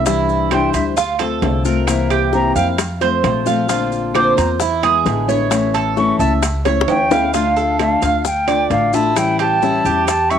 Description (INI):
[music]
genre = latin, Cuban son and guajira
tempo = 132 BPM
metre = 4/4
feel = straight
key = D harmonic minor from 7.3 s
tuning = A4 = 440 Hz
[part]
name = nylon-string guitar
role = accompaniment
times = 0.0-10.4 s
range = C3 to F4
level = -19 LUFS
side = left 7 dB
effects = cassette tape
[part]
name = Cuban tres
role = arpeggios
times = 0.0-10.4 s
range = E4 to F5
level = -19 LUFS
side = right 9 dB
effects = cassette tape
[part]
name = upright bass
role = bass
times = 0.0-10.4 s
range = A1 to F2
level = -22 LUFS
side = equal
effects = none
[part]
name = bongos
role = percussion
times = 0.1-10.4 s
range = none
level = -23 LUFS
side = left 9 dB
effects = none
[part]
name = maracas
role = percussion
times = 0.1-10.4 s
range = none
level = -31 LUFS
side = left 12 dB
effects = none
[part]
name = timbales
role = percussion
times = 0.1-10.4 s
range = none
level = -26 LUFS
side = right 10 dB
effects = none
[part]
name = concert flute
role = melody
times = 0.5-10.4 s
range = E5 to D6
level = -19 LUFS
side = left 1 dB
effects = cassette tape
[part]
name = claves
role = percussion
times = 0.5-10.3 s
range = none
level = -31 LUFS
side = right 12 dB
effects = none
[sound]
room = moderate spring reverb, RT60 1.5 s, small room ambience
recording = home recording on cassette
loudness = -14 LUFS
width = side -8 dB against mid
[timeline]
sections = 0.0-7.3 A section; 7.3-10.4 B section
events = flute solo 0.0-7.3; drum fill 6.7-7.3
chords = 0.1 Cadd9; 1.0 Dm7; 1.9 C7; 2.8 F; 3.7 Bbadd9; 4.6 E7; 5.5 A; 7.3 Dm; 9.2 A7